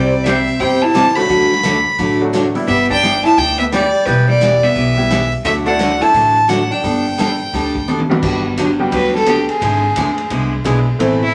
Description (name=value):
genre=country, western swing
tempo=173 BPM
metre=4/4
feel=swing 63% on 8ths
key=G major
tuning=A4 = 439 Hz
part: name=clear fiddle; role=melody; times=0.0-11.3 s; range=E4 to B5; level=-18 LUFS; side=equal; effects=none
part: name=vintage hollow-body jazz guitar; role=second line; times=0.0-7.9 s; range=G3 to F#4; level=-22 LUFS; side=equal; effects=none
part: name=bright upright piano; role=accompaniment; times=0.0-2.7, 5.0-11.2 s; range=F#3 to A4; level=-22 LUFS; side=equal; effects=none
part: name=picked steel-string acoustic guitar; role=accompaniment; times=0.0-11.2 s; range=C3 to B4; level=-22 LUFS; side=equal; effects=none
part: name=upright bass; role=bass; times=0.0-11.3 s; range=E1 to D2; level=-23 LUFS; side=equal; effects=none
part: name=swinging big-band drum kit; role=drums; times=0.3-11.1 s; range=crash cymbal, hi-hat, kick drum, ride cymbal, snare drum, toms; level=-26 LUFS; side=equal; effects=none
room=wet club reverb, RT60 0.8 s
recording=none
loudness=-15 LUFS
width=mono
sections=0.0-8.2 A section; 8.2-11.3 B section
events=drum fill 7.9-8.2; fiddle solo 8.2-11.3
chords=0.0 C; 1.3 D; 2.7 G6; 4.1 Em; 5.5 Dadd9; 6.8 Gadd9; 8.2 Gmaj7; 9.6 E7/G#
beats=0.26 0.60 0.95 | 1.29 1.64 1.99 2.33 | 2.68 3.03 3.37 3.72 | 4.07 4.41 4.76 5.11 | 5.45 5.80 6.15 6.49 | 6.84 7.18 7.53 7.88 | 8.22 8.57 8.92 9.27 | 9.61 9.96 10.30 10.65 | 11.00